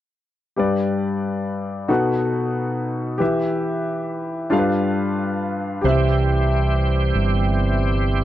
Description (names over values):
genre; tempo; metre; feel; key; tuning
gospel; 46 BPM (dotted quarters); 6/8; straight; G major; A4 = 441 Hz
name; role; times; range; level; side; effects
clear concert grand piano; accompaniment; 0.6-8.2 s; G2 to F#5; -21 LUFS; left 2 dB; none
bright tonewheel organ; sustained chords; 5.8-8.2 s; E3 to G4; -23 LUFS; right 4 dB; slow rotary speaker, overdrive, chorus vibrato
fingered electric bass; bass; 5.8-8.2 s; G1 to C2; -19 LUFS; right 1 dB; none
room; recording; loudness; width
little or no reverb; dry, close 1970s-style studio recording; -19 LUFS; side -13 dB against mid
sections
0.6-8.2 A section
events
none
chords
0.6 G; 1.9 B7; 3.2 Em; 4.5 G7; 5.8 C